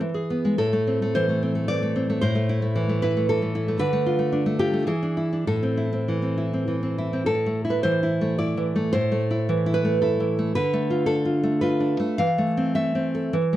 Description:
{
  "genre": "romantic piece for solo classical guitar",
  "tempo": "98-118 BPM",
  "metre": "3/4",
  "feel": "rubato",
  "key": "A minor",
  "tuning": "A4 = 441 Hz",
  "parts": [
    { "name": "nylon-string guitar", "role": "solo", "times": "0.0-13.6 s", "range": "A2 to F5", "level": "-21 LUFS", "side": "equal", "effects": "slapback echo" }
  ],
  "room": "moderate booth ambience, RT60 0.2 s",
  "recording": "dry, close 1970s-style studio recording",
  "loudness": "-21 LUFS",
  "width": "side -13 dB against mid",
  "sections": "0.0-7.3 A section; 7.3-13.6 A section",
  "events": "none",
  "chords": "0.0 E; 0.6 Am; 3.8 Bm7b5/D; 4.9 E7; 5.5 Am; 10.6 Bm7b5/D; 12.2 Am/E"
}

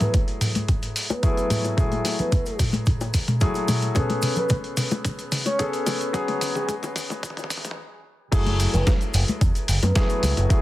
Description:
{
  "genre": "nu-disco, nu disco",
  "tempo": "110 BPM",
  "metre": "4/4",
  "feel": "straight",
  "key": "F# minor",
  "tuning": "A4 = 441 Hz",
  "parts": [
    { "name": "soft octave-layered synth lead", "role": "melody", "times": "0.0-10.6 s", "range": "G#4 to C#5", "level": "-30 LUFS", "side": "right 1 dB", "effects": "chorus, tremolo, dub echo" },
    { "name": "warm baby grand piano", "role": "accompaniment", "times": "0.0-10.6 s", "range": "F#3 to A4", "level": "-28 LUFS", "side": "left 2 dB", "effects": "digital delay" },
    { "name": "dusty soul sampler-style drum kit", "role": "drums", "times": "0.0-10.6 s", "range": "crash cymbal, hi-hat, snare drum, toms", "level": "-26 LUFS", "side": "equal", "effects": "overdrive" },
    { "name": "cabasa, congas and bongos", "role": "percussion", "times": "0.0-10.6 s", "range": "none", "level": "-30 LUFS", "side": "left 3 dB", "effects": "none" },
    { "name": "electronic kick drum", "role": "drums", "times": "0.1-10.6 s", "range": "none", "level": "-22 LUFS", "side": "equal", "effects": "overdrive" },
    { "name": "picked electric bass with an envelope filter", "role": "bass", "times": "8.3-10.5 s", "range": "F#1 to F#2", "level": "-22 LUFS", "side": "equal", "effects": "none" }
  ],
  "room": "light reverb, digital ambience",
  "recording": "dense, heavily limited modern master, high-pass filter",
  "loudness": "-21 LUFS",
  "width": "side -15 dB against mid",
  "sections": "0.0-8.3 A section; 8.3-10.6 B section",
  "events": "build-up 0.0-8.3; drum fill 0.0-7.8; filter sweep 0.0-8.3; stop 7.8-8.3; drop 8.3-10.6",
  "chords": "0.0 F#m9; 4.0 Amaj9; 6.1 C#7sus4; 8.3 F#m9"
}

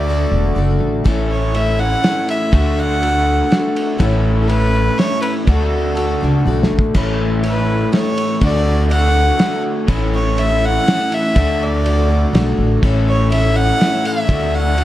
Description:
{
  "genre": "folk rock and heartland rock",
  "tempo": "122 BPM",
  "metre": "3/4",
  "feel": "straight",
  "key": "A major",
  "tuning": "A4 = 440 Hz",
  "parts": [
    { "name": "rich fiddle", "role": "melody", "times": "0.0-14.8 s", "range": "A4 to F#5", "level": "-20 LUFS", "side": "right 1 dB", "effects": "plate reverb, analog delay" },
    { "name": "picked plugged-in twelve-string acoustic guitar", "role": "accompaniment", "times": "0.0-14.8 s", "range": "A2 to A4", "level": "-23 LUFS", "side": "left 5 dB", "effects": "plate reverb" },
    { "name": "crunchy overdriven guitar", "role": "riff", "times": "0.0-14.8 s", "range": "A2 to F#4", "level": "-21 LUFS", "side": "right 1 dB", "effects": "none" },
    { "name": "upright bass", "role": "bass", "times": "0.0-14.8 s", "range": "E1 to D2", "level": "-17 LUFS", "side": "equal", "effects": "none" },
    { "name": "cloth-damped thuddy drum kit", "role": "drums", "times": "1.1-14.8 s", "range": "crash cymbal, kick drum, ride cymbal, snare drum, toms", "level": "-21 LUFS", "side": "equal", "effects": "none" }
  ],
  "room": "light reverb",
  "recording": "dark, warm production",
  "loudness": "-13 LUFS",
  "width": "side -14 dB against mid",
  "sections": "0.0-7.0 A section; 7.0-14.8 A section",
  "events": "drum fill 6.5-7.0",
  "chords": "0.0 D; 1.1 A; 2.5 D; 4.0 A; 5.5 D; 7.0 A; 8.4 D; 9.9 A; 11.4 D; 12.8 A; 14.3 D"
}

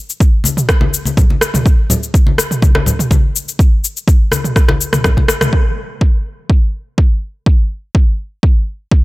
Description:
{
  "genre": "house",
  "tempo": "124 BPM",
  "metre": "4/4",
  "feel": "straight",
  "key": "none",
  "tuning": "none",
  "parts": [
    { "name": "deep house drum kit", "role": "drums", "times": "0.1-5.5 s", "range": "cabasa, rim click, toms", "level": "-16 LUFS", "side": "equal", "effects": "overdrive, low-pass filter on perc, low-pass filter on snare, low-pass filter on toms" },
    { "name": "electronic kick drum", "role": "drums", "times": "0.2-9.0 s", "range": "none", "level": "-11 LUFS", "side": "equal", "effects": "overdrive" },
    { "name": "congas", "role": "percussion", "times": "0.4-5.5 s", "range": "none", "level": "-18 LUFS", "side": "left 2 dB", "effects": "none" }
  ],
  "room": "digital ambience",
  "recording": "none",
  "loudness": "-11 LUFS",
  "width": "side -20 dB against mid",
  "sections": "0.0-5.5 A section; 5.5-9.0 B section",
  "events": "drum fill 4.6-5.5; band accent 5.4",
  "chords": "none"
}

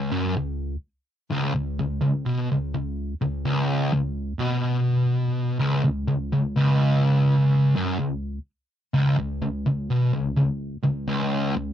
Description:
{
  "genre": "metal",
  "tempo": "63 BPM",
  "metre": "4/4",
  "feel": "straight",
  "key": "unclear",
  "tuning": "A4 = 439 Hz",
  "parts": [
    { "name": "fuzz guitar", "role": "solo", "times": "0.0-11.7 s", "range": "C#2 to B2", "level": "-21 LUFS", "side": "equal", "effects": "distortion" }
  ],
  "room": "light reverb",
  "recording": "dry, close 1970s-style studio recording",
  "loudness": "-21 LUFS",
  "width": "side -10 dB against mid",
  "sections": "0.0-11.7 A section",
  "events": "none",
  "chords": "none"
}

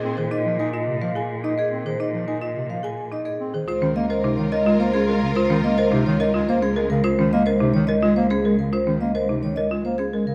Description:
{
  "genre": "classical, minimalist pattern music",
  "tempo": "107 BPM",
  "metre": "3/4",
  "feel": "straight",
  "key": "Db major from 3.7 s",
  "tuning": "A4 = 441 Hz",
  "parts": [
    { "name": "vibraphone with medium mallets", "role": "melody", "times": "0.0-10.3 s", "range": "Ab4 to Ab5", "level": "-27 LUFS", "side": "equal", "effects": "none" },
    { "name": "mellow bass clarinet", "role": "accompaniment", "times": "0.0-10.3 s", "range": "C3 to Eb4", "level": "-27 LUFS", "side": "equal", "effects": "none" },
    { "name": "rich symphonic string section", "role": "sustained chords", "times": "0.0-0.1, 3.7-6.9 s", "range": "F4 to C5", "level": "-33 LUFS", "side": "equal", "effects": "none" },
    { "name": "folk marimba with medium hard mallets", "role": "arpeggios", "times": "0.0-10.3 s", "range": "Db4 to Eb5", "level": "-30 LUFS", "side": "equal", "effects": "none" },
    { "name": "warm cello", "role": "bass", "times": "0.0-10.3 s", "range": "Db2 to Bb2", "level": "-27 LUFS", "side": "equal", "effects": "none" }
  ],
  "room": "wet large studio reverb, RT60 1.4 s",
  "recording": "none",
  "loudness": "-22 LUFS",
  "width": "mono",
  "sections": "0.0-3.7 A section; 3.7-10.3 B section",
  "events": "none",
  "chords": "0.0 Ab/Bb; 3.7 Db69"
}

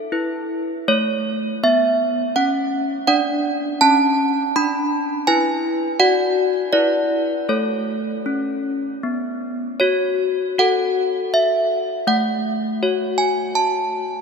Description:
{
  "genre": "classical, tune for handbells",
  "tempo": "81 BPM",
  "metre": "3/4",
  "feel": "straight",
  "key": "A major, F# minor from 9.8 s",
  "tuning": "A4 = 440 Hz",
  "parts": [
    { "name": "desk bells", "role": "solo", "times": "0.0-14.2 s", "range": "A3 to B5", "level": "-17 LUFS", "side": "equal", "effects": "none" }
  ],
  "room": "wet cathedral reverb, RT60 5.2 s",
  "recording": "none",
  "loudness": "-17 LUFS",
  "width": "side -5 dB against mid",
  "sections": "0.0-9.8 A section; 9.8-14.2 B section",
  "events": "none",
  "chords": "0.1 E5; 0.9 A; 3.1 Bm; 5.3 E; 6.0 D/F#; 6.7 E5; 7.5 A; 9.8 F#m; 12.1 F#m/A"
}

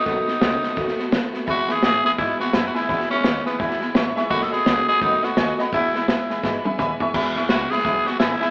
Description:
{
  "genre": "rockabilly",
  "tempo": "170 BPM",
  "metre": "4/4",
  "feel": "swing 61% on 8ths",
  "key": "E major",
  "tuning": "A4 = 443 Hz",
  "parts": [
    { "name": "growling tenor saxophone", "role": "melody", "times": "0.0-8.5 s", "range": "B3 to A4", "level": "-24 LUFS", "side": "equal", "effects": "none" },
    { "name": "picked steel-string acoustic guitar", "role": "accompaniment", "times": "0.0-8.5 s", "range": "E2 to F#4", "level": "-30 LUFS", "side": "equal", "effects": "none" },
    { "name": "upright bass", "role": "bass", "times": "0.1-8.4 s", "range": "G#1 to A2", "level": "-35 LUFS", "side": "equal", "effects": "none" },
    { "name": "vintage drum kit", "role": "drums", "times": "0.1-8.4 s", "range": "crash cymbal, hi-hat, kick drum, snare drum, toms", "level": "-26 LUFS", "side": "equal", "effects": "none" },
    { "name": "honky-tonk upright piano", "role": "accompaniment", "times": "1.5-8.5 s", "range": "D#5 to C#6", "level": "-29 LUFS", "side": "equal", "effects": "none" }
  ],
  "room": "moderate large studio reverb, RT60 1.2 s",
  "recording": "band playing live in one room, AM radio sound",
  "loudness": "-21 LUFS",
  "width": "mono",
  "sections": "0.0-7.1 A section; 7.1-8.5 B section",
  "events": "drum fill 6.4-7.1; tenor saxophone solo 7.1-8.5",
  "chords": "0.0 B7; 1.5 E; 4.3 B7; 5.7 E"
}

